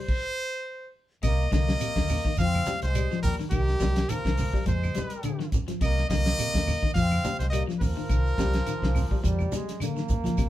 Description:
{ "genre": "afrobeat", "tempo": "105 BPM", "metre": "4/4", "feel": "swing 55% on 16ths", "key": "C minor", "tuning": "A4 = 437 Hz", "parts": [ { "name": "brilliant trumpet", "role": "melody", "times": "0.0-9.5 s", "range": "G4 to F5", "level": "-31 LUFS", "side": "left 1 dB", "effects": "none" }, { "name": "electric guitar at the edge of break-up", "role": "arpeggios", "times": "0.0-10.5 s", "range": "C3 to Ab3", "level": "-33 LUFS", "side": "left 4 dB", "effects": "spring reverb" }, { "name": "warm soul drum kit", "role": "drums", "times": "0.1-10.5 s", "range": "crash cymbal, hi-hat, kick drum, snare drum", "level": "-29 LUFS", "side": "equal", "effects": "none" }, { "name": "trombone with plunger mute", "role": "second line", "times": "1.2-9.5 s", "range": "Eb3 to C4", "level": "-38 LUFS", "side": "right 3 dB", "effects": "none" }, { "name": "fingered electric bass", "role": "bass", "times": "1.2-10.5 s", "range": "C2 to F3", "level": "-28 LUFS", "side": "equal", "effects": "none" }, { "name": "claves", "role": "percussion", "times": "1.2-10.5 s", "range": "none", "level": "-46 LUFS", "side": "right 4 dB", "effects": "none" }, { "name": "shekere", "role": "percussion", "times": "1.2-10.5 s", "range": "none", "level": "-37 LUFS", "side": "right 4 dB", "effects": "none" }, { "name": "congas", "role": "percussion", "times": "1.5-10.4 s", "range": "none", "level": "-34 LUFS", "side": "right 1 dB", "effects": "none" }, { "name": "brilliant bass trombone", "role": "second line", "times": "8.4-10.5 s", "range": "F3 to Bb3", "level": "-35 LUFS", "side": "right 3 dB", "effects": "none" } ], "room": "moderate small room reverb, RT60 0.5 s", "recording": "band playing live in one room", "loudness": "-24 LUFS", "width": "side -14 dB against mid", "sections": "0.0-1.2 A section; 1.2-10.5 B section", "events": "none", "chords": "0.1 N.C.; 1.2 Cm9; 2.4 Fsus2; 3.5 Cm7; 4.7 Fm9; 5.8 Cm9; 7.0 Fsus2; 8.1 Cm7; 9.2 Fm11", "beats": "0.10 0.67 | 1.24 1.81 2.38 2.96 | 3.53 4.10 4.67 5.24 | 5.81 6.38 6.96 7.53 | 8.10 8.67 9.24 9.81 | 10.38" }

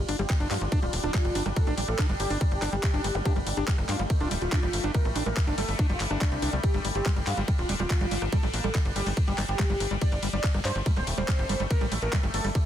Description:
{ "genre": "psychedelic trance", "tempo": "142 BPM", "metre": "4/4", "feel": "straight", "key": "G minor", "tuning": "A4 = 445 Hz", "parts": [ { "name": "bubbling stepped-filter texture", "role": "sustained chords", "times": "0.0-12.7 s", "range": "G3 to D4", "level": "-36 LUFS", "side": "left 1 dB", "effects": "chorus, built-in reverb, sidechain pumping" }, { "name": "tight sequencer bass", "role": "bass", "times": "0.0-12.5 s", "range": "D1 to G2", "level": "-30 LUFS", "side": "equal", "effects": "none" }, { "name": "screaming distorted acid line", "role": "riff", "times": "0.1-12.6 s", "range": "G3 to D4", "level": "-34 LUFS", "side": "moving between left 8 dB and right 8 dB", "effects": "distortion, chorus, auto-pan, sidechain pumping, ping-pong delay" }, { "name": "garage drum kit", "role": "drums", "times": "0.1-12.6 s", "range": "handclaps, hi-hat, ride cymbal, rim click", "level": "-34 LUFS", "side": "left 1 dB", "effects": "soft clipping on snare" }, { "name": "wide unison lead", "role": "melody", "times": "0.2-12.5 s", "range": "D4 to D5", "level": "-34 LUFS", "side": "equal", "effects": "phaser, sidechain pumping, ping-pong delay" }, { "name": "resonant blip pluck", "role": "second line", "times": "0.2-2.2, 7.0-8.9 s", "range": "F3 to C4", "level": "-45 LUFS", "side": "right 1 dB", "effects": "none" }, { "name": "electronic kick drum", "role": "drums", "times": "0.3-12.6 s", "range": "none", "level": "-25 LUFS", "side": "equal", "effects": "none" }, { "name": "zap", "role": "sound effects", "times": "3.1-3.3 s", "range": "none", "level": "-40 LUFS", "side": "right 1 dB", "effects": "none" } ], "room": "little or no reverb", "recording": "dense, heavily limited modern master", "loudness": "-24 LUFS", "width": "side -11 dB against mid", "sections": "0.0-12.7 A section", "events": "none", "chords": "0.0 G5", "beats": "0.30 0.72 1.14 | 1.56 1.99 2.41 2.83 | 3.25 3.68 4.10 4.52 | 4.95 5.37 5.79 6.21 | 6.63 7.06 7.48 7.90 | 8.32 8.75 9.17 9.59 | 10.02 10.44 10.86 11.28 | 11.71 12.13 12.55" }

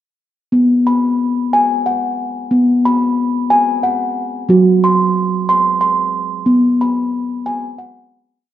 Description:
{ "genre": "world meditative", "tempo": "61 BPM (dotted quarters)", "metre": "6/8", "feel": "straight", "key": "unclear", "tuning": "A4 = 438 Hz", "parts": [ { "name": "steel tongue drum", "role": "solo", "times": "0.5-8.5 s", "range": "F#3 to C6", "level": "-13 LUFS", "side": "equal", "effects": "none" } ], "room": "wet concert hall reverb, RT60 2.1 s", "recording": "none", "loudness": "-13 LUFS", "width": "side -12 dB against mid", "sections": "0.5-8.4 A section", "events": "fade-out 6.5-8.4", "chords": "0.5 B5; 4.5 N.C.; 6.5 B5", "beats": "| 0.53 1.52 | 2.51 3.50 | 4.49 5.48 | 6.46 7.45" }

